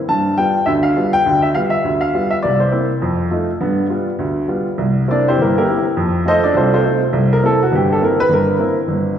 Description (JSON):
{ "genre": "jazz", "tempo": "205 BPM", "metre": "4/4", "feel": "swing 60% on 8ths", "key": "C mixolydian", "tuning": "A4 = 440 Hz", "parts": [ { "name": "clear baby grand piano", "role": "solo", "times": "0.1-9.1 s", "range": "G1 to A5", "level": "-14 LUFS", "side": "equal", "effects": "none" } ], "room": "wet scoring stage reverb, RT60 1.6 s", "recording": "recorded in a church or concert hall", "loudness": "-14 LUFS", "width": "side -9 dB against mid", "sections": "0.0-4.8 A section; 4.8-9.2 B section", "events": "grand piano solo 4.8-9.2", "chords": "0.1 G7; 2.4 C7; 3.0 F7; 3.6 G7; 4.8 C7; 6.0 F7; 7.1 C7" }